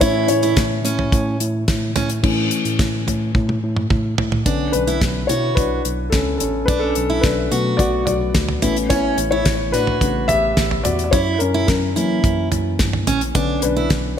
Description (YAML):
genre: piano-driven pop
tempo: 108 BPM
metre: 4/4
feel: straight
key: B minor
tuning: A4 = 440 Hz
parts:
  - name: dark baby grand piano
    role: accompaniment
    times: 0.0-14.2 s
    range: C#3 to E5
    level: -20 LUFS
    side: left 3 dB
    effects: slapback echo
  - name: picked steel-string acoustic guitar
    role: riff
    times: 0.0-13.9 s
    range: C#4 to F#4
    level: -23 LUFS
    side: right 5 dB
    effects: slapback echo
  - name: mellow tine electric piano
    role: bass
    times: 0.0-14.1 s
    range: A1 to F#3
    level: -23 LUFS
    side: right 1 dB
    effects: none
  - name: damped 70s drum kit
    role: drums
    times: 0.0-14.0 s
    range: crash cymbal, hi-hat, kick drum, snare drum, toms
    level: -20 LUFS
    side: equal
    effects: none
room: moderate lush hall reverb, RT60 1.6 s, studio ambience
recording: big arena sound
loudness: -16 LUFS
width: side -9 dB against mid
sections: 0.0-2.2 A section; 2.2-4.5 B section; 4.5-14.2 C section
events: grand piano solo 0.0-2.2, 2.2-4.5, 4.5-14.2; drum fill 3.3-4.5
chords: 0.0 A; 4.5 Bmadd9; 6.7 Bm9; 8.6 Aadd9; 11.1 F#7; 13.3 Bmadd9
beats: | 0.01 0.57 1.13 1.68 | 2.24 2.79 3.35 3.90 | 4.46 5.02 5.57 6.13 | 6.68 7.24 7.79 8.35 | 8.90 9.46 10.02 10.57 | 11.13 11.68 12.24 12.79 | 13.35 13.91